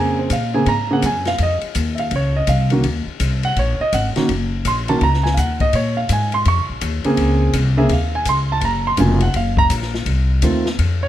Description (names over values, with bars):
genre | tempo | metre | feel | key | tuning
jazz piano trio | 166 BPM | 4/4 | swing 64% on 8ths | Bb minor | A4 = 440 Hz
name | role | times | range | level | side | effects
dark concert grand piano | melody | 0.0-11.1 s | Db3 to Db6 | -18 LUFS | right 2 dB | none
upright bass | bass | 0.0-11.1 s | F1 to Bb2 | -19 LUFS | left 1 dB | none
open jazz drum kit | drums | 0.3-10.9 s | hi-hat, kick drum, ride cymbal, snare drum | -25 LUFS | left 4 dB | none
room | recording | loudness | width
light reverb | none | -15 LUFS | side -12 dB against mid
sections
0.0-11.1 A section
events
grand piano solo 0.0-11.1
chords
0.0 Bbm9; 2.8 Ebm7; 5.7 Bbm9; 8.6 Gbmaj7; 10.1 F7